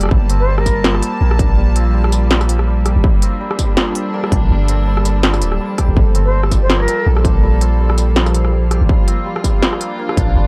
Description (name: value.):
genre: half-time drum and bass.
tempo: 164 BPM.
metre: 4/4.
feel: swing 56% on 16ths, half-time.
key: G minor.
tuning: A4 = 440 Hz.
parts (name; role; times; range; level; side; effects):
clear studio string section; sustained chords; 0.0-10.5 s; G3 to A5; -26 LUFS; equal; vintage 12-bit sampler grit, sidechain pumping.
santur; arpeggios; 0.0-10.5 s; G3 to G4; -29 LUFS; equal; analog delay.
long sustained 808-style bass; bass; 0.0-10.5 s; D1 to Bb1; -17 LUFS; equal; tube saturation.
industrial drum kit; drums; 0.0-10.3 s; hi-hat, rim click, snare drum, tambourine; -21 LUFS; equal; none.
electronic kick drum; drums; 0.1-10.3 s; none; -18 LUFS; equal; distortion.
backwards swelling texture; texture; 1.7-10.5 s; F3 to A4; -31 LUFS; equal; built-in reverb.
mellow silver concert flute; melody; 0.4-0.9, 6.2-7.1 s; Bb4 to C5; -24 LUFS; equal; analog delay.
room: digital ambience.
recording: dry, gritty hardware recording.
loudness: -15 LUFS.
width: mono.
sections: 0.0-10.5 A section.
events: none.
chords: 0.0 Gmadd9.